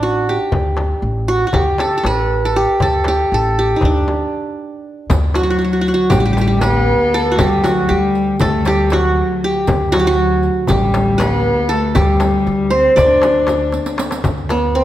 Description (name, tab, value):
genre	Turkish makam ensemble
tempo	236 BPM (eighths)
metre	9/8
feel	straight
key	D makam hicaz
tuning	A4 = 442 Hz
part	qanun	melody	0.0-14.8 s	B3-40c to D5	-16 LUFS	right 1 dB	none
part	upright bass	bass	0.0-14.8 s	A1 to D2	-19 LUFS	equal	none
part	darbuka	percussion	0.0-14.7 s	none	-24 LUFS	left 2 dB	none
part	frame drum	percussion	0.5-14.6 s	none	-22 LUFS	left 2 dB	none
part	dark double bass	drone	5.1-14.3 s	D2	-26 LUFS	right 1 dB	none
part	riq	percussion	5.1-14.6 s	none	-29 LUFS	right 4 dB	none
part	rich cello	second line	5.3-14.0 s	F#3-20c to D4	-19 LUFS	left 3 dB	none
room	moderate recital hall reverb, RT60 1.4 s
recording	none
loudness	-13 LUFS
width	side -13 dB against mid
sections	0.0-5.1 A section; 5.1-14.2 B section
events	break 4.3-5.1; drum fill 13.7-14.2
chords	none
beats	0.01 0.27 | 0.52 0.77 1.03 1.28 1.54 1.79 2.05 2.30 2.56 | 2.81 3.06 3.32 3.57 3.83 4.08 4.34 4.59 4.84 | 5.10 5.35 5.61 5.86 6.12 6.37 6.62 6.88 7.13 | 7.39 7.64 7.89 8.15 8.40 8.65 8.91 9.16 9.42 | 9.67 9.93 10.18 10.43 10.69 10.94 11.20 11.45 11.70 | 11.96 12.21 12.46 12.72 12.97 13.23 13.48 13.73 13.99 | 14.24 14.50 14.75